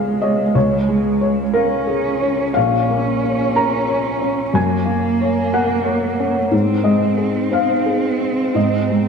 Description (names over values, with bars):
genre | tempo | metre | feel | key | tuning
neoclassical piano and strings | 60 BPM (dotted quarters) | 6/8 | rubato | Db major | A4 = 440 Hz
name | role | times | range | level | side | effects
warm cello | second line | 0.0-9.1 s | Ab3 to Db4 | -21 LUFS | right 4 dB | tape echo
felt-muted upright piano | accompaniment | 0.0-9.1 s | Bb1 to Bb5 | -17 LUFS | left 1 dB | wide subtle chorus
room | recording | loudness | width
wet lush hall reverb, RT60 1.7 s | dreamy mix soaked in reverb, cassette tape | -15 LUFS | side -6 dB against mid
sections
0.0-9.1 A section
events
none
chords
0.0 Db; 2.6 Bbm; 4.6 Gb; 6.5 Ab